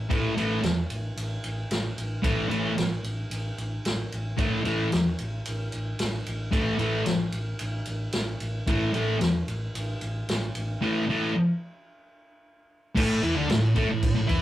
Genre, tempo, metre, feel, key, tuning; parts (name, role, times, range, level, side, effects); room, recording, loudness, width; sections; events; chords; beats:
garage rock duo or trio; 112 BPM; 4/4; straight; A4 = 441 Hz
hollow-body short-scale picked electric bass; bass; 0.0-14.4 s; A1 to E2; -32 LUFS; equal
thick fuzz guitar; riff; 0.1-14.4 s; A2 to E4; -24 LUFS; equal; distortion
vintage drum kit; drums; 0.1-14.4 s; crash cymbal, kick drum, ride cymbal, snare drum; -30 LUFS; equal
moderate studio reverb, RT60 0.5 s; rough rehearsal-room recording, warm saturation; -25 LUFS; side -13 dB against mid
0.0-13.0 A section; 13.0-14.4 B section
0.0 A5
| 0.11 0.65 1.18 1.71 | 2.25 2.78 3.32 3.85 | 4.39 4.92 5.46 6.00 | 6.53 7.07 7.61 8.14 | 8.68 9.21 9.75 10.29 | 10.82 11.36 11.89 12.43 | 12.96 13.50 14.03